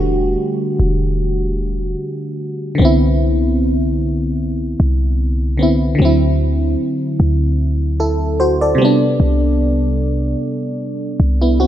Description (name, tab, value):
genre	contemporary R&B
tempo	75 BPM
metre	4/4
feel	swing 54% on 16ths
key	unclear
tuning	A4 = 440 Hz
part	FM electric piano	accompaniment	0.0-11.7 s	C3 to D5	-16 LUFS	equal	chorus
part	warm 808-style bass	bass	0.0-11.7 s	E1 to D2	-16 LUFS	equal	none
room	light reverb, digital ambience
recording	none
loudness	-14 LUFS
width	side -11 dB against mid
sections	0.0-11.7 A section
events	none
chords	0.0 Em11; 2.8 Cmaj9; 6.0 D9; 8.8 Cmaj7sus2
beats	0.39 1.19 1.99 | 2.79 3.59 4.39 5.19 | 5.99 6.79 7.59 8.39 | 9.19 9.99 10.79 11.59